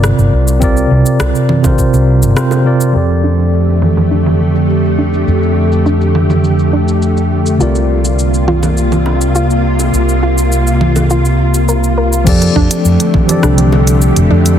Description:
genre	sunset chillout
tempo	103 BPM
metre	4/4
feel	straight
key	F major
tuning	A4 = 437 Hz
part	mellow tine electric piano	accompaniment	0.0-14.6 s	C3 to D5	-15 LUFS	equal	auto-pan, low-pass filter, tape echo
part	mellow fretless electric bass	bass	0.0-14.6 s	F1 to F2	-12 LUFS	equal	none
part	smooth R&B drum kit	drums	0.0-14.6 s	congas, crash cymbal, hi-hat, rim click, shaker	-18 LUFS	right 2 dB	low-pass filter on perc, soft clipping on snare, low-pass filter on snare, low-pass filter on cymbals, low-pass filter on hats
part	electronic kick drum	drums	0.6-1.9, 12.3-13.3 s	none	-12 LUFS	equal	none
part	bongos	percussion	1.6-2.6, 8.6-13.8 s	none	-27 LUFS	right 1 dB	none
part	soft string machine	sustained chords	3.2-14.6 s	C3 to G4	-15 LUFS	equal	ensemble chorus
part	soft round pluck	arpeggios	3.2-14.5 s	D4 to Bb4	-21 LUFS	right 1 dB	chorus, tape echo
room	moderate concert hall reverb, RT60 1.9 s, digital ambience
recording	dense, heavily limited modern master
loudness	-9 LUFS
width	side -9 dB against mid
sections	0.0-2.9 A section; 2.9-12.3 B section; 12.3-14.6 C section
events	filter sweep on drum 2.9-12.3; filter sweep on synth arpeggio sound 2.9-12.3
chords	0.0 C7sus4; 2.9 F69; 7.6 C7sus4; 12.3 F69

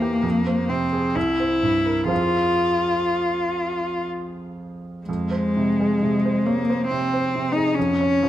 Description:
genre	classical, romantic duo for cello and grand piano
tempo	60-70 BPM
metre	3/4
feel	rubato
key	F minor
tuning	A4 = 441 Hz
part	rich cello	melody	0.0-8.3 s	Ab3 to F4	-21 LUFS	left 1 dB	none
part	clear baby grand piano	accompaniment	0.0-8.3 s	C2 to F5	-26 LUFS	right 3 dB	none
room	moderate recital hall reverb, RT60 1.7 s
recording	close, detailed microphones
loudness	-19 LUFS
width	side -12 dB against mid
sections	0.0-5.1 A section; 5.1-8.3 A section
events	none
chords	0.2 Fm; 1.2 C7; 2.1 Fm; 7.8 Bbm/F (rootless)

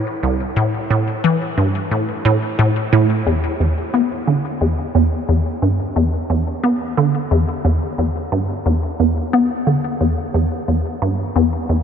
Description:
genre	ambient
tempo	89 BPM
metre	4/4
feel	straight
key	unclear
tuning	A4 = 440 Hz
part	resonant blip pluck	solo	0.2-11.8 s	C2 to B3	-16 LUFS	equal	analog chorus, ping-pong delay
room	moderate huge ambient reverb, RT60 8.3 s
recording	in a vast, echoing space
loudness	-16 LUFS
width	side -7 dB against mid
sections	0.0-11.8 A section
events	none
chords	none

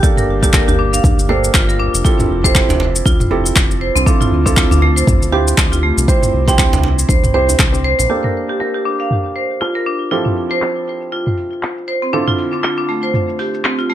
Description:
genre	afro house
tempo	119 BPM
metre	4/4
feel	swing 57% on 16ths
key	G dorian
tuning	A4 = 440 Hz
part	marimba with hard mallets	arpeggios	0.0-13.9 s	A3 to G5	-18 LUFS	equal	sidechain pumping, low-pass filter, ping-pong delay
part	felt-muted upright piano	stabs	0.0-13.9 s	D3 to C5	-21 LUFS	right 4 dB	sidechain pumping, low-pass filter, ping-pong delay
part	deep house drum kit	drums	0.0-13.9 s	handclaps, hi-hat, shaker, toms	-18 LUFS	equal	low-pass filter on perc, studio reverb, low-pass filter on toms, low-pass filter on snare, low-pass filter on hats
part	electronic kick drum	drums	0.0-7.7 s	none	-14 LUFS	equal	studio reverb
part	djembe	percussion	0.0-8.1 s	none	-22 LUFS	right 1 dB	none
part	round analog bass	bass	0.3-8.1 s	F1 to D2	-18 LUFS	equal	tube saturation, sidechain pumping
room	studio ambience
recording	none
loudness	-12 LUFS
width	side -12 dB against mid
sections	0.0-8.1 A section; 8.1-13.9 B section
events	filter sweep on drum 8.1-13.9; filter sweep on felt piano 8.1-13.9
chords	0.0 Gmadd9; 2.0 Fmaj7; 4.1 Dm7; 6.1 C; 8.1 Gmadd9; 10.1 Fmaj7; 12.1 Dm7

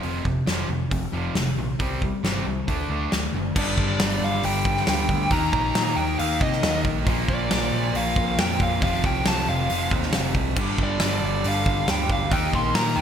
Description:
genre	hard rock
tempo	137 BPM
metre	4/4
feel	straight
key	G minor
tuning	A4 = 440 Hz
part	crunchy overdriven guitar	riff	0.0-13.0 s	F2 to Eb4	-29 LUFS	left 9 dB	none
part	overdriven electric guitar	riff	0.0-13.0 s	F2 to Eb4	-29 LUFS	right 11 dB	none
part	overdriven picked electric bass	bass	0.0-13.0 s	F1 to C3	-28 LUFS	equal	none
part	big rock drum kit	drums	0.0-12.9 s	crash cymbal, hi-hat, kick drum, snare drum	-25 LUFS	equal	gated reverb
part	dark smooth lead guitar	melody	3.6-13.0 s	D5 to C6	-26 LUFS	equal	overdrive, digital delay
part	analog string pad	sustained chords	10.6-13.0 s	G3 to F5	-37 LUFS	right 1 dB	none
room	light reverb, small room ambience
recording	bright 1980s-style digital production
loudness	-21 LUFS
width	side -8 dB against mid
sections	0.0-3.6 A section; 3.6-13.0 B section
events	none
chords	0.0 F5; 1.8 C5; 2.7 D; 3.6 G5; 5.3 Eb5; 7.1 Bb; 8.8 F5; 10.6 G5; 12.3 Eb

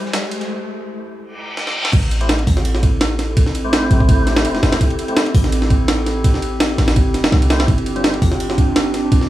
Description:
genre	drum and bass, jungle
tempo	167 BPM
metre	4/4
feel	swing 54% on 16ths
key	A minor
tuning	A4 = 438 Hz
part	warbly tape-like pad	sustained chords	0.0-9.3 s	C4 to C5	-23 LUFS	right 1 dB	chorus, built-in reverb
part	riser and reverse cymbal	sound effects	0.0-1.9 s	none	-24 LUFS	left 1 dB	none
part	breakbeat sampler-style drum kit	drums	0.1-9.3 s	crash cymbal, hi-hat, kick drum, ride cymbal, snare drum	-16 LUFS	equal	high-pass filter on cymbals, small room ambience, high-pass filter on hats, high-pass filter on kick, high-pass filter on snare
part	crunchy breakbeat drum kit	drums	0.1-0.5 s	hi-hat, snare drum	-33 LUFS	left 4 dB	none
part	warm 808-style bass	bass	1.9-9.3 s	E1 to C2	-19 LUFS	equal	none
part	tonewheel organ	stabs	2.2-5.2, 7.5-8.1 s	G3 to C5	-26 LUFS	left 2 dB	slow rotary speaker, vintage 12-bit sampler grit, dub echo
room	light reverb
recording	small room ambience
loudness	-14 LUFS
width	side -14 dB against mid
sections	0.0-1.9 A section; 1.9-9.3 B section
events	build-up 0.0-1.9; riser 0.0-0.5; break 0.5-1.9; reverse cymbal 1.2-1.9; drum fill 1.6-1.9; drop 1.9-9.3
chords	0.0 Am7; 7.7 G7sus4

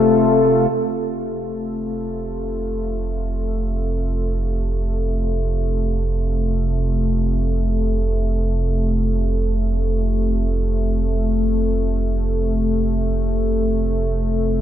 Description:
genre	ambient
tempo	free time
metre	none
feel	none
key	F major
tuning	A4 = 440 Hz
part	warm analog pad	sustained chords	0.0-14.6 s	C3 to A4	-21 LUFS	left 2 dB	chorus
part	warm sub bass	bass	0.0-14.6 s	F1	-21 LUFS	right 1 dB	none
room	moderate lush hall reverb, RT60 2.6 s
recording	none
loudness	-18 LUFS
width	side -11 dB against mid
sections	0.7-14.6 A section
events	fade-in on analog synth pad 0.7-14.6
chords	0.0 F

